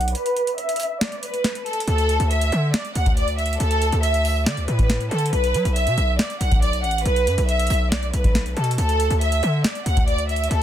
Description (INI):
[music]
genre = hip hop, trap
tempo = 139 BPM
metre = 4/4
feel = half-time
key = D major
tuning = A4 = 440 Hz
[part]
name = rich studio violin section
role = melody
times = 0.0-10.6 s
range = A4 to F#5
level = -23 LUFS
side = right 1 dB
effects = low-pass filter
[part]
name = distorted 808-style bass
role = bass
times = 0.0-10.6 s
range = A1 to F#3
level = -21 LUFS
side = equal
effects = distortion
[part]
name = booming analog drum machine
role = drums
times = 0.0-10.6 s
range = hi-hat, kick drum, snare drum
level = -24 LUFS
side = equal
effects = none
[sound]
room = digital ambience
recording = dense, heavily limited modern master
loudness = -18 LUFS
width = side -10 dB against mid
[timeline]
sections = 0.0-10.6 A section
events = filter sweep on violin section 0.0-1.9; break 0.1-1.9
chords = 0.0 B5; 1.9 D5; 5.3 B5; 8.8 D5